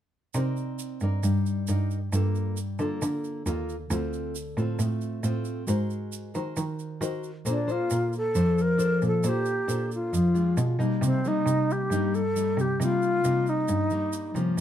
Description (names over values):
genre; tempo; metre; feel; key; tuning
bossa nova; 135 BPM; 4/4; straight; unclear; A4 = 440 Hz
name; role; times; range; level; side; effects
nylon-string guitar; accompaniment; 0.3-14.6 s; G2 to D5; -29 LUFS; left 3 dB; none
rich cello; bass; 0.3-14.6 s; D2 to Eb3; -28 LUFS; right 1 dB; none
tube shaker; percussion; 0.3-14.6 s; none; -41 LUFS; right 8 dB; none
alto flute; melody; 7.5-14.4 s; C4 to Bb4; -26 LUFS; equal; none
room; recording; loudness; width
light reverb; dark, warm production; -24 LUFS; side -10 dB against mid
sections
0.3-7.5 A section; 7.5-14.6 B section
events
none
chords
0.3 Cm9; 2.1 Gm9; 3.9 Dm7; 5.7 Ab9; 7.5 Bbmaj9; 10.6 Bdim7; 11.0 Cm7